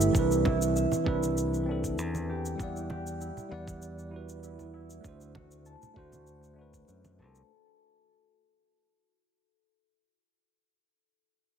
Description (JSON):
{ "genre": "sunset chillout", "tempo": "98 BPM", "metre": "4/4", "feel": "swing 53% on 16ths", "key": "unclear", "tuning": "A4 = 437 Hz", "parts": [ { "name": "tine electric piano", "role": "accompaniment", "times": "0.0-7.5 s", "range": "E3 to F#5", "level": "-33 LUFS", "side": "moving between left 6 dB and right 9 dB", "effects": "auto-pan, low-pass filter, digital delay" }, { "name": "concert harp", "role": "arpeggios", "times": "0.0-9.4 s", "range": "E4 to A5", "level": "-34 LUFS", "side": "left 2 dB", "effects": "vintage 12-bit sampler grit, low-pass filter, digital delay" }, { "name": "fingered electric bass", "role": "bass", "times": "0.0-7.4 s", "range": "C2 to F#2", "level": "-33 LUFS", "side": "equal", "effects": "none" }, { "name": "shaker", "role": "drums", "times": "0.0-7.5 s", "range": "none", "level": "-39 LUFS", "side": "left 1 dB", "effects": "none" }, { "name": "electronic kick drum", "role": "drums", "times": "0.1-6.9 s", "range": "none", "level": "-32 LUFS", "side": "equal", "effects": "none" }, { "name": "congas", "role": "percussion", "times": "0.5-7.2 s", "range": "none", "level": "-37 LUFS", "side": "right 3 dB", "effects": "none" } ], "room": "light reverb, digital ambience", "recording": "heavily compressed radio sound", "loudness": "-27 LUFS", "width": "side -8 dB against mid", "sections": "0.0-7.5 A section", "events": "fade-out 0.0-7.5; filter sweep on harp 0.0-7.5", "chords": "0.1 Cmaj9; 2.6 Em9; 5.0 D7" }